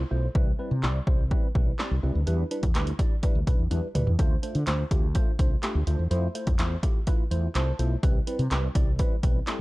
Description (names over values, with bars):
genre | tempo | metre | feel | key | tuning
dance-pop | 125 BPM | 4/4 | straight | unclear | A4 = 440 Hz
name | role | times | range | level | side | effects
tine electric piano | accompaniment | 0.0-9.6 s | G3 to A5 | -33 LUFS | right 1 dB | phaser, sidechain pumping
fretless electric bass | bass | 0.0-9.4 s | B1 to D3 | -26 LUFS | equal | sidechain pumping
punchy analog drum machine | drums | 0.4-9.6 s | handclaps, hi-hat, kick drum, snare drum, toms | -25 LUFS | equal | none
room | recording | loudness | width
digital ambience | dry, gritty hardware recording | -23 LUFS | side -20 dB against mid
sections
0.0-9.6 A section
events
drum fill 3.7-4.2; tine electric piano fill 7.3-8.0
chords
0.4 Cmaj7; 2.3 Em7; 4.2 Dm7; 6.1 Fmaj7; 8.0 Cmaj7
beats
| 0.35 0.83 1.31 1.79 | 2.27 2.75 3.23 3.71 | 4.19 4.67 5.15 5.63 | 6.11 6.59 7.07 7.55 | 8.03 8.51 8.99 9.47